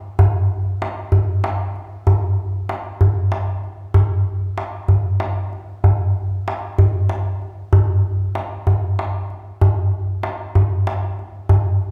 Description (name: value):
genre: arabic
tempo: 64 BPM (dotted quarters)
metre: 6/8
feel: straight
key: none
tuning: none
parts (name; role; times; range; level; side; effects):
- darbuka; percussion; 0.2-11.6 s; none; -19 LUFS; equal; none
room: wet recital hall reverb, RT60 1.7 s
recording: recorded in a church or concert hall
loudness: -19 LUFS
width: mono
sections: 0.0-2.1 A section; 2.1-11.9 B section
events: none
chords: none